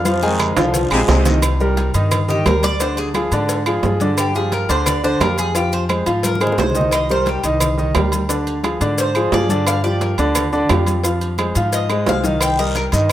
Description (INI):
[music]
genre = latin, salsa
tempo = 175 BPM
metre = 4/4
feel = straight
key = C minor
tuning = A4 = 440 Hz
[part]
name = mellow trombone section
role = melody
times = 0.0-1.3 s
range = C3 to F3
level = -25 LUFS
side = equal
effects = none
[part]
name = clear concert grand piano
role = accompaniment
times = 0.0-13.1 s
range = D3 to Ab5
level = -19 LUFS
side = equal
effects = none
[part]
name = upright bass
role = bass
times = 0.0-13.1 s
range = Bb1 to Ab2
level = -21 LUFS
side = equal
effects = none
[part]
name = agogo bells and timbales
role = percussion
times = 0.1-13.1 s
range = none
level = -24 LUFS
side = right 6 dB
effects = none
[part]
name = congas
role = percussion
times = 0.1-13.1 s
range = none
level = -27 LUFS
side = left 2 dB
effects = none
[part]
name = cowbell and bongos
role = percussion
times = 0.1-13.1 s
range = none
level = -30 LUFS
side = left 6 dB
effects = none
[part]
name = guiro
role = percussion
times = 0.1-1.4, 12.4-13.1 s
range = none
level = -32 LUFS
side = left 2 dB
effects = none
[part]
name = maracas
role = percussion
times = 0.1-13.1 s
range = none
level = -29 LUFS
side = left 2 dB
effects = none
[part]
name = claves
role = percussion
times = 0.4-12.6 s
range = none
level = -32 LUFS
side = left 3 dB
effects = none
[part]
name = warm saxophone section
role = second line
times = 0.9-1.4 s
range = C3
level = -24 LUFS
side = equal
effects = none
[part]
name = Cuban tres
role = melody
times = 2.3-12.9 s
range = G4 to G5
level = -23 LUFS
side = left 1 dB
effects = none
[sound]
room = moderate plate reverb, RT60 3.0 s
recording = rough home demo mix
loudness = -15 LUFS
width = side -12 dB against mid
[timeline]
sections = 0.0-1.4 A section; 1.4-13.1 B section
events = drum fill 0.1-1.4, 6.2-6.9, 11.9-12.4; Cuban tres solo 1.4-13.1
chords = 0.1 Fm; 1.4 Cm7; 2.8 Ddim; 4.2 G5; 5.6 Fm; 6.9 Cm7; 8.3 Dm7b5; 9.7 G5; 11.0 Fm; 12.4 Cm7